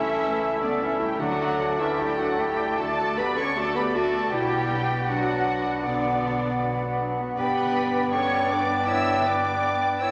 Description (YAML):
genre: classical, slow romantic movement for symphony orchestra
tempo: 78 BPM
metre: 4/4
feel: rubato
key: D major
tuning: A4 = 440 Hz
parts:
  - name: muted symphonic violin section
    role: melody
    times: 0.0-10.1 s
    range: D5 to E6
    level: -37 LUFS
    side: equal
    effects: none
  - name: dark clarinet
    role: second line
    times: 0.0-10.1 s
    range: B3 to C#5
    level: -33 LUFS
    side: equal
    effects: none
  - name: mellow hollow concert flute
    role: second line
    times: 0.0-10.1 s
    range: F#5 to A5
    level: -31 LUFS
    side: equal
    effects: none
  - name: muted symphonic violin section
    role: second line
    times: 0.0-10.1 s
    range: D5 to E6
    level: -35 LUFS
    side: equal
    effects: none
  - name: warm oboe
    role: second line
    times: 0.0-10.1 s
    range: D5 to E5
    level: -34 LUFS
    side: equal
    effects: none
  - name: mellow bassoon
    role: accompaniment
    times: 0.0-10.1 s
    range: A3 to B3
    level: -33 LUFS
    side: equal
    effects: none
  - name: muted symphonic viola section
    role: accompaniment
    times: 0.0-10.1 s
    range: F#3 to F#4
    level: -37 LUFS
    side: equal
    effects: none
  - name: warm French horn section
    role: sustained chords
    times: 0.0-10.1 s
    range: D3 to E4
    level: -35 LUFS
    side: equal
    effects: none
  - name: concert harp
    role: arpeggios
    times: 0.0-10.1 s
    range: G2 to B5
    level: -39 LUFS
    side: equal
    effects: none
  - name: muted studio double bass section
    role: bass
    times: 0.0-10.1 s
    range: G1 to D2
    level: -39 LUFS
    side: equal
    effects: none
  - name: muted symphonic cello section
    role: bass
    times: 0.0-10.1 s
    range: D4 to E5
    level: -36 LUFS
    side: equal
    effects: none
  - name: timpani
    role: percussion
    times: 1.2-2.3 s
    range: D3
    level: -42 LUFS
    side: equal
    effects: none
room: wet recital hall reverb, RT60 1.5 s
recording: none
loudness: -24 LUFS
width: mono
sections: 0.0-10.1 A section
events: none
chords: 0.0 A7/C#; 1.2 D; 4.3 Bm; 7.4 G